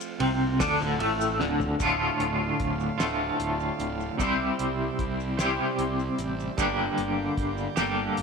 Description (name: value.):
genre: psychedelic rock.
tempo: 50 BPM (dotted quarters).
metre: 6/8.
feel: straight.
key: D minor.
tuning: A4 = 439 Hz.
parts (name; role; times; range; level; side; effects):
overdriven combo organ; sustained chords; 0.0-8.2 s; F3 to G5; -38 LUFS; right 10 dB; spring reverb.
maracas; percussion; 0.0-8.0 s; none; -43 LUFS; left 16 dB; none.
twangy electric guitar; riff; 0.2-8.2 s; D2 to C5; -25 LUFS; equal; tremolo, double-tracked left and right.
fuzz fingered electric bass; bass; 0.2-8.2 s; D1 to D2; -34 LUFS; equal; overdrive.
cloth-damped thuddy drum kit; drums; 0.2-8.2 s; hi-hat, kick drum, ride cymbal, snare drum, toms; -34 LUFS; equal; none.
room: light reverb, small room ambience.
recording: 1960s-style stereo with parts hard left and right.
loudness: -24 LUFS.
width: side -5 dB against mid.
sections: 0.0-1.8 A section; 1.8-8.2 B section.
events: drum fill 1.4-1.8.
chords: 0.0 Dm; 4.2 Cadd9; 6.6 Gm.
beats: 0.60 | 1.80 3.00 | 4.19 5.39 | 6.58 7.78.